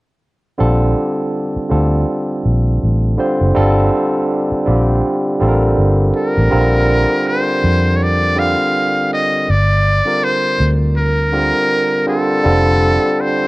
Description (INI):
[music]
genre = R&B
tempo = 81 BPM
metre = 4/4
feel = swing 57% on 16ths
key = Bb major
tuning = A4 = 440 Hz
[part]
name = barky tine electric piano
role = accompaniment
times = 0.6-13.5 s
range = D3 to C5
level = -16 LUFS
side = right 1 dB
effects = medium stereo tremolo
[part]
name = vintage muted fingered electric bass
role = bass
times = 0.6-13.0 s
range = F1 to F2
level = -14 LUFS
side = equal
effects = none
[part]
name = trumpet with metal mute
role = melody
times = 6.2-13.5 s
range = A4 to F5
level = -16 LUFS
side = equal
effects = none
[sound]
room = light reverb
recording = worn, warbling old tape, cassette tape, warbly pitch drift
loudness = -12 LUFS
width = side -21 dB against mid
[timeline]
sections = 0.6-6.5 A section; 6.5-13.5 B section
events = none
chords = 0.6 Bbmaj7; 3.6 Gm9; 6.5 Bb; 9.5 Gm7; 12.4 Fadd9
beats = | 0.59 1.33 2.07 2.81 | 3.55 4.29 5.04 5.78 | 6.52 7.26 8.00 8.74 | 9.48 10.22 10.96 11.70 | 12.44 13.18